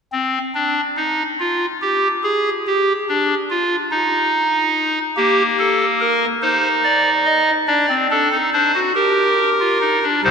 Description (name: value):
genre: classical, baroque-style 3-part fugue for pipe organ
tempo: 48 BPM (dotted quarters)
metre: 6/8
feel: straight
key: unclear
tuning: A4 = 439 Hz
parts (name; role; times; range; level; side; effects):
- chamber organ, clarinet reed; solo; 0.1-10.3 s; C2 to Eb5; -15 LUFS; equal; none
room: wet cathedral reverb, RT60 4.5 s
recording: minimal, uncompressed stereo recording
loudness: -15 LUFS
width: side -6 dB against mid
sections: 0.1-10.2 A section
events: none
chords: 0.1 N.C.; 5.2 Gm/Bb; 6.4 Cm/Eb; 7.7 D; 8.9 Gm